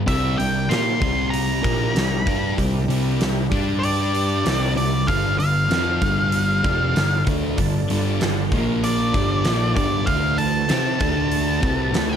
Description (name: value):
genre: blues rock power trio and southern rock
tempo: 96 BPM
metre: 4/4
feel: straight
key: unclear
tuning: A4 = 440 Hz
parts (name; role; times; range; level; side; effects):
- thick fuzz guitar; riff; 0.0-12.2 s; F2 to C5; -22 LUFS; left 1 dB; distortion
- picked electric bass; bass; 0.0-12.2 s; F1 to C3; -26 LUFS; equal; none
- octave-fuzz lead guitar; melody; 0.1-12.2 s; D5 to C6; -24 LUFS; right 1 dB; distortion, slapback echo
- overdriven tonewheel organ; sustained chords; 0.1-12.2 s; E3 to F5; -32 LUFS; right 4 dB; slow rotary speaker, chorus vibrato
- huge arena drum kit; drums; 0.1-12.1 s; hi-hat, kick drum, snare drum; -25 LUFS; equal; none
room: light reverb, small room ambience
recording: none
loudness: -18 LUFS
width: side -8 dB against mid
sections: 0.0-12.2 A section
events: none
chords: 0.1 C7; 3.5 G5; 4.5 C7; 5.1 G7; 8.5 Bb5; 9.1 G5; 10.1 D7